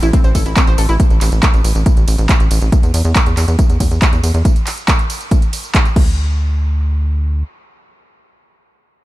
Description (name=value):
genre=uplifting trance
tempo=139 BPM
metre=4/4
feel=straight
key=unclear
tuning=A4 = 439 Hz
part: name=analog pluck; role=arpeggios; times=0.0-0.9 s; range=C4 to C5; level=-23 LUFS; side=left 1 dB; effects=chorus, cassette tape, sidechain pumping, dub echo
part: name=tight sequencer bass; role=bass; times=0.0-7.4 s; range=A1 to E2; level=-14 LUFS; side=equal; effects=sidechain pumping
part: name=big-room dance drum kit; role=drums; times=0.0-6.0 s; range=crash cymbal, handclaps, hi-hat, ride cymbal, tambourine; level=-20 LUFS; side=right 1 dB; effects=overdrive, studio reverb
part: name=electronic kick drum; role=drums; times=0.1-6.0 s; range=none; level=-12 LUFS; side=equal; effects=studio reverb
room=digital ambience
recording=dark, warm production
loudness=-12 LUFS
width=side -17 dB against mid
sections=0.0-6.2 A section; 6.2-9.0 B section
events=drop 0.0-6.2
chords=0.0 Am; 2.7 N.C.